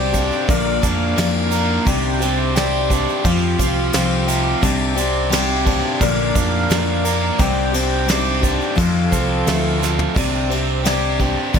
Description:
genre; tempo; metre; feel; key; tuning
folk rock and heartland rock; 87 BPM; 4/4; straight; unclear; A4 = 439 Hz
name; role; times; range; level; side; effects
picked twelve-string acoustic guitar; accompaniment; 0.0-11.6 s; Bb2 to Bb4; -22 LUFS; left 7 dB; none
accordion; sustained chords; 0.0-10.2 s; G4 to D6; -27 LUFS; right 4 dB; none
overdriven electric guitar; riff; 0.0-11.6 s; F2 to Bb4; -22 LUFS; right 3 dB; none
picked electric bass; bass; 0.0-11.6 s; Bb1 to F2; -23 LUFS; right 1 dB; none
soft brush drum kit; drums; 0.1-11.6 s; crash cymbal, kick drum, ride cymbal, snare drum, toms; -21 LUFS; equal; none
tube shaker; percussion; 0.1-10.1 s; none; -33 LUFS; right 20 dB; none
room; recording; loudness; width
light reverb, studio reverb; none; -16 LUFS; side -7 dB against mid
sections
0.0-10.2 A section; 10.2-11.6 B section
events
drum fill 9.8-10.2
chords
0.5 Bb; 1.9 Csus2; 3.3 Fsus2; 4.6 Csus2; 6.0 Bb; 7.4 Csus2; 8.8 F; 10.2 Csus2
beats
0.49 1.18 | 1.87 2.56 3.25 3.94 | 4.63 5.33 6.02 6.71 | 7.40 8.09 8.78 9.48 | 10.17 10.86 11.55

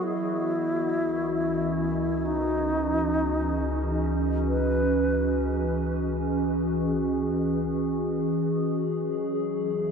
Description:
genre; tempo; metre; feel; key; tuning
ambient; 54 BPM; 4/4; straight; C# dorian; A4 = 440 Hz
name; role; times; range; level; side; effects
wooden-headed alto flute; melody; 0.0-5.5 s; D#4 to B4; -29 LUFS; left 1 dB; tape echo
warbly tape-like pad; sustained chords; 0.0-9.9 s; E3 to E5; -26 LUFS; equal; chorus, built-in reverb
soft synth bell; arpeggios; 0.0-1.6 s; F#4 to D#5; -53 LUFS; equal; none
round analog bass; bass; 0.0-9.9 s; C#2 to E2; -32 LUFS; equal; none
room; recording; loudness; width
wet huge ambient reverb, RT60 8.2 s; none; -24 LUFS; side -6 dB against mid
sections
0.0-9.9 A section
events
none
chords
0.0 C#madd9; 8.9 Eadd9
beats
| 0.02 1.14 2.25 3.36 | 4.47 5.58 6.69 7.80 | 8.91

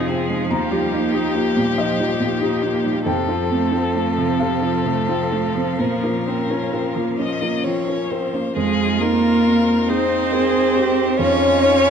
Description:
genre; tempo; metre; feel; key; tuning
neoclassical piano and strings; 43-48 BPM (dotted quarters); 6/8; rubato; F minor; A4 = 440 Hz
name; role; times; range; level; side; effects
rich violin; melody; 0.0-11.9 s; G4 to Eb5; -23 LUFS; left 6 dB; none
clear cello; second line; 0.0-11.9 s; F3 to Db4; -22 LUFS; right 4 dB; none
felt-muted upright piano; accompaniment; 0.0-11.9 s; Eb2 to Bb5; -22 LUFS; equal; none
rich viola; accompaniment; 0.0-11.9 s; C3 to Ab4; -26 LUFS; right 2 dB; none
rich chamber string section; sustained chords; 0.0-11.9 s; Ab3 to F5; -31 LUFS; right 3 dB; none
room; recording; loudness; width
moderate concert hall reverb, RT60 1.9 s; dark, warm production; -17 LUFS; side -7 dB against mid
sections
0.0-8.6 A section; 8.6-11.9 B section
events
none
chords
0.0 Fm7; 0.5 Ebadd9; 3.1 F; 5.8 Bbmadd9; 8.6 Fm7; 11.2 Eb7sus4/F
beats
| 0.51 1.78 | 3.07 4.40 | 5.79 7.18 | 8.55 9.88 | 11.19

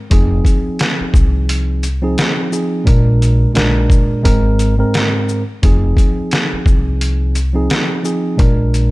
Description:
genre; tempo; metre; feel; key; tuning
hip hop, boom-bap hip-hop; 87 BPM; 4/4; swing 57% on 16ths; F dorian; A4 = 442 Hz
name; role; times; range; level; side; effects
mellow tine electric piano; accompaniment; 0.1-8.9 s; Ab2 to Bb4; -18 LUFS; right 1 dB; cassette tape, high-pass filter, low-pass filter
upright bass; bass; 0.1-8.9 s; F1 to C2; -15 LUFS; equal; none
trip hop sampler-style drum kit; drums; 0.1-8.9 s; hi-hat, kick drum, shaker, snare drum; -14 LUFS; equal; none
room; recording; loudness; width
little or no reverb; none; -12 LUFS; side -20 dB against mid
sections
0.0-8.9 A section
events
none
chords
0.1 Fm7; 2.9 Bb7; 4.3 Abadd9; 5.6 Fm7; 8.4 Bb7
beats
| 0.11 0.80 1.49 2.18 | 2.87 3.56 4.25 4.94 | 5.63 6.32 7.01 7.70 | 8.39

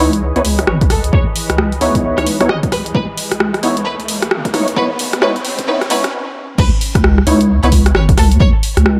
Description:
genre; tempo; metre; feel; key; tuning
UK garage, two-step garage; 132 BPM; 4/4; swing 62% on 16ths; C# minor; A4 = 439 Hz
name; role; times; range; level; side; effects
warm analog pad; sustained chords; 0.0-6.1 s; E3 to D#5; -29 LUFS; equal; chorus, sidechain pumping
percussive organ stab; stabs; 0.0-7.7 s; B3 to C#5; -20 LUFS; equal; ensemble chorus, analog delay
deep soft wobble bass; bass; 0.0-9.0 s; G#1 to C#2; -17 LUFS; equal; chorus
riser; sound effects; 1.1-6.1 s; none; -30 LUFS; equal; none
punchy analog drum machine; drums; 0.1-9.0 s; crash cymbal, hi-hat, rim click; -20 LUFS; equal; none
clear chamber violin section; melody; 0.4-8.5 s; A4 to D#5; -26 LUFS; equal; low-pass filter, analog delay
electronic kick drum; drums; 0.8-8.5 s; none; -17 LUFS; equal; none
room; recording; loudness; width
moderate spring reverb, RT60 1.6 s, digital ambience; echo-heavy mix, high-pass filter; -14 LUFS; mono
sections
0.0-6.6 A section; 6.6-9.0 B section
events
build-up 0.0-6.6; filter sweep 0.0-6.6; riser 1.1-6.1; stop 6.1-6.6; drop 6.6-9.0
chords
0.0 C#m9; 6.4 N.C.; 6.6 C#m9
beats
0.22 0.68 | 1.13 1.58 2.04 2.49 | 2.95 3.40 3.86 4.31 | 4.77 5.22 5.68 6.13 | 6.58 7.04 7.49 7.95 | 8.40 8.86

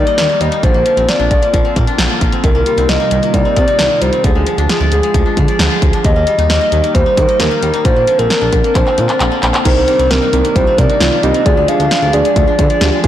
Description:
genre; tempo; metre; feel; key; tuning
synth-pop; 133 BPM; 4/4; straight; C minor; A4 = 437 Hz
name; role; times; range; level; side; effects
hollow clarinet-like synth lead; melody; 0.0-13.0 s; Ab4 to F5; -15 LUFS; left 1 dB; chorus
sweeping resonant pad; sustained chords; 0.0-13.1 s; C3 to F4; -22 LUFS; right 1 dB; chorus
koto; arpeggios; 0.0-13.1 s; D3 to Eb5; -21 LUFS; left 2 dB; tape echo
smooth gliding synth bass; bass; 0.0-13.1 s; Bb1 to Eb3; -17 LUFS; equal; transformer saturation
house drum kit; drums; 0.1-13.1 s; crash cymbal, handclaps, hi-hat, kick drum, snare drum; -15 LUFS; equal; none
muted felt-like synth keys; accompaniment; 9.7-13.1 s; C4 to Bb4; -17 LUFS; right 4 dB; chorus
room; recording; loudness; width
moderate lush hall reverb, RT60 1.8 s, digital ambience; blown-out, overdriven recording, overdrive; -10 LUFS; side -11 dB against mid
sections
0.0-9.7 A section; 9.7-13.1 B section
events
drum fill 8.8-9.7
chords
0.0 Eb; 0.6 Bbadd9; 2.4 Cm7; 4.2 Ddim; 6.0 Eb; 7.8 Bbadd9; 9.7 Cm7; 11.5 Ddim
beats
0.18 | 0.63 1.08 1.53 1.99 | 2.44 2.89 3.34 3.79 | 4.24 4.69 5.14 5.59 | 6.05 6.50 6.95 7.40 | 7.85 8.30 8.75 9.20 | 9.65 10.11 10.56 11.01 | 11.46 11.91 12.36 12.81

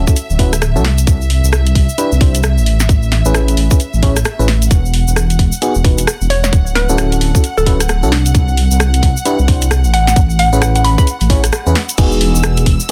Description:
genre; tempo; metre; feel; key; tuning
UK garage, two-step garage; 132 BPM; 4/4; swing 61% on 16ths; E major; A4 = 440 Hz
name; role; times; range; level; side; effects
clear studio violin section; sustained chords; 0.0-12.9 s; E5 to E6; -29 LUFS; equal; sidechain pumping
FM electric piano; stabs; 0.0-12.9 s; B3 to C#5; -22 LUFS; equal; chorus, low-pass filter, dub echo
dark detuned saw bass; bass; 0.0-12.8 s; D1 to E2; -16 LUFS; equal; sidechain pumping
electronic kick drum; drums; 0.1-12.8 s; none; -14 LUFS; equal; small room ambience
tube shaker; percussion; 0.1-12.9 s; none; -26 LUFS; equal; none
garage drum kit; drums; 0.2-12.9 s; crash cymbal, hi-hat, rim click, snare drum; -21 LUFS; equal; small room ambience
hollow square pluck; melody; 6.3-11.0 s; D4 to B5; -20 LUFS; equal; chorus, dub echo
ethereal airy pad; texture; 12.8-12.9 s; none; barely audible; none; none
room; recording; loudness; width
little or no reverb; dense, heavily limited modern master; -13 LUFS; mono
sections
0.0-12.0 A section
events
filter sweep on FM electric piano 0.0-12.0; band accent 11.5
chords
0.0 Dmaj9; 0.8 Cadd9; 2.7 Amaj9; 4.7 Emaj7sus2; 6.5 Dmaj9; 8.1 Cadd9; 9.9 Amaj9; 12.0 Emaj9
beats
0.16 0.62 | 1.07 1.53 1.98 2.44 | 2.89 3.35 3.80 4.25 | 4.71 5.16 5.62 6.07 | 6.53 6.98 7.44 7.89 | 8.35 8.80 9.25 9.71 | 10.16 10.62 11.07 11.53 | 11.98 12.44 12.89

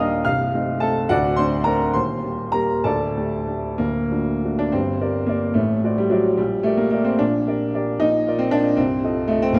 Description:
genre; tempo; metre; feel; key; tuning
classical, romantic character piece for solo piano; 62-80 BPM (dotted quarters); 6/8; rubato; G minor; A4 = 440 Hz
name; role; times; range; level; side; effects
warm baby grand piano; solo; 0.0-9.6 s; C1 to F6; -21 LUFS; equal; none
room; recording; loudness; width
moderate scoring stage reverb, RT60 1.5 s; none; -21 LUFS; mono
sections
0.0-4.7 A section; 4.7-9.6 B section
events
none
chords
0.3 Adim/C; 1.1 D7; 1.9 Eb; 2.8 Dsus4; 3.8 D; 4.7 Gm; 5.6 D7/A; 6.4 Gm/Bb; 8.0 Bb; 8.8 F7/C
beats
0.26 | 1.09 1.94 | 2.84 3.79 | 4.73 5.55 | 6.38 7.19 | 8.01 8.77 | 9.56

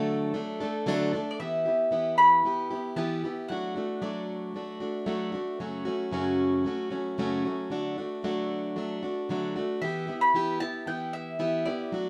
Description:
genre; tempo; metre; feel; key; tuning
acoustic folk duo or small band; 114 BPM; 4/4; straight; E dorian; A4 = 438 Hz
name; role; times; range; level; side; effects
mandolin; melody; 0.0-5.3, 9.8-12.1 s; D5 to B5; -28 LUFS; equal; none
picked plugged-in steel-string acoustic guitar; accompaniment; 0.0-12.1 s; F#2 to A4; -32 LUFS; equal; none
room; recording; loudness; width
light reverb; none; -29 LUFS; mono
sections
0.0-1.4 A section; 1.4-9.8 B section; 9.8-12.1 C section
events
none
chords
0.0 D; 1.4 Em; 3.5 D/F#; 5.6 F#m; 7.7 D; 9.8 Em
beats
0.33 0.86 | 1.39 1.91 2.44 2.97 | 3.49 4.02 4.55 5.07 | 5.60 6.13 6.66 7.18 | 7.71 8.23 8.76 9.29 | 9.81 10.34 10.87 11.39 | 11.92

